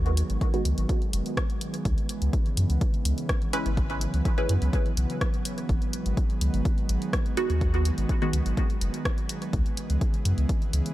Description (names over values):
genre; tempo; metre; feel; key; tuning
dub techno; 125 BPM; 4/4; straight; G# minor; A4 = 440 Hz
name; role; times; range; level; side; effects
airy breathy pad; sustained chords; 0.0-10.9 s; C#3 to B3; -33 LUFS; right 1 dB; chorus, sidechain pumping
warm sub bass; bass; 0.0-10.8 s; F#1 to F#2; -25 LUFS; equal; sidechain pumping
deep house drum kit; drums; 0.1-10.9 s; hi-hat, rim click; -35 LUFS; left 1 dB; dub echo
electronic kick drum; drums; 0.4-10.6 s; none; -26 LUFS; equal; none
filtered dub chord stab; stabs; 0.5-8.4 s; D#3 to B4; -32 LUFS; right 2 dB; phaser, sidechain pumping, dub echo
room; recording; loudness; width
little or no reverb; none; -24 LUFS; side -15 dB against mid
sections
0.0-10.9 A section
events
none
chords
0.0 G#m7; 1.9 C#m7; 5.7 G#m7; 9.5 C#m7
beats
0.41 0.89 1.37 | 1.85 2.33 2.81 3.29 | 3.77 4.25 4.73 5.21 | 5.69 6.17 6.65 7.13 | 7.61 8.09 8.57 9.05 | 9.53 10.01 10.49